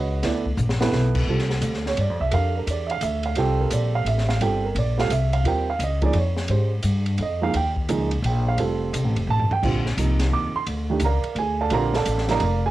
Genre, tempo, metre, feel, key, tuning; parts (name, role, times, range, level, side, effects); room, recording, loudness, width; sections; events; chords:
modal jazz; 172 BPM; 3/4; swing 65% on 8ths; Bb major from 9.6 s; A4 = 440 Hz
dark baby grand piano; accompaniment; 0.0-12.7 s; C3 to D6; -24 LUFS; right 5 dB; cassette tape
upright bass; bass; 0.0-12.7 s; F1 to Ab2; -23 LUFS; left 1 dB
open jazz drum kit; drums; 0.2-12.5 s; crash cymbal, hi-hat, kick drum, ride cymbal, snare drum, toms; -30 LUFS; equal; cassette tape
light reverb; home recording on cassette; -20 LUFS; side -15 dB against mid
0.0-1.3 A section; 1.3-9.6 A section; 9.6-12.7 A section
drum fill 0.6-0.9, 9.3-9.6
0.2 Asus24; 1.3 C9sus4; 5.5 Eb9sus4; 8.6 Fadd9; 9.6 Bbmaj9